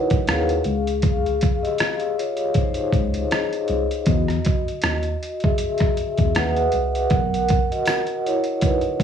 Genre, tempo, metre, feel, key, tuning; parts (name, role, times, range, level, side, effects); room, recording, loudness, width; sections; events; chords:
lo-fi hip hop; 79 BPM; 4/4; swing 55% on 16ths; A4 = 441 Hz
vibraphone with soft mallets; accompaniment; 0.0-9.0 s; D#4 to F#5; -22 LUFS; left 1 dB; low-pass filter, plate reverb
mellow tine electric piano; bass; 0.1-9.0 s; A#1 to E2; -24 LUFS; equal; medium stereo tremolo
trip hop sampler-style drum kit; drums; 0.1-9.0 s; hi-hat, kick drum, rim click; -22 LUFS; right 1 dB; overdrive
tambourine; percussion; 7.9-8.1 s; -40 LUFS; right 7 dB
moderate studio reverb, RT60 0.6 s; cassette tape, studio reverb; -19 LUFS; side -8 dB against mid
0.0-9.0 A section
vibraphone solo 0.0-9.0
0.0 Bmaj9; 0.7 C#maj9; 4.1 Emaj9; 7.1 Bmaj9